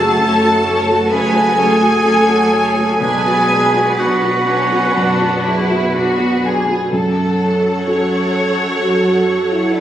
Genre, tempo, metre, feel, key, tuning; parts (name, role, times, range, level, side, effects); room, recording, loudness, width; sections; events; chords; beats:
cinematic, emotional film score for orchestra; 60-67 BPM; 4/4; rubato; F# minor; A4 = 440 Hz
clear studio violin section; melody; 0.0-9.8 s; F#5 to A5; -23 LUFS; left 1 dB
large flute ensemble; second line; 0.0-5.9 s; F#5 to A5; -20 LUFS; right 1 dB
rich symphonic violin section; second line; 0.0-9.8 s; B3 to D5; -21 LUFS; left 1 dB
warm oboe; second line; 0.0-5.9 s; F#4 to A4; -19 LUFS; right 1 dB
dark concert grand piano; accompaniment; 0.0-9.8 s; B1 to C#5; -20 LUFS; equal
rich studio viola section; accompaniment; 0.0-9.8 s; F#3 to A4; -23 LUFS; right 1 dB
dark French horn section; sustained chords; 0.0-9.8 s; F#3 to F#4; -19 LUFS; equal
rich studio cello section; bass; 0.0-9.8 s; F#2 to B4; -22 LUFS; right 1 dB
rich studio double bass section; bass; 0.0-6.8 s; F#1 to B1; -27 LUFS; right 2 dB
timpani; percussion; 0.0-0.6 s; F#2; -34 LUFS; equal
moderate recital hall reverb, RT60 1.6 s; recorded on a phone in the room, studio reverb, compression, nothing above 10.7 kHz; -12 LUFS; side -11 dB against mid
0.0-6.9 A section; 6.9-9.8 B section
0.0 F#m; 3.0 Bm; 6.9 F#m
0.20 1.10 2.03 | 3.00 3.98 4.96 5.94 | 6.91 7.85 8.81 9.71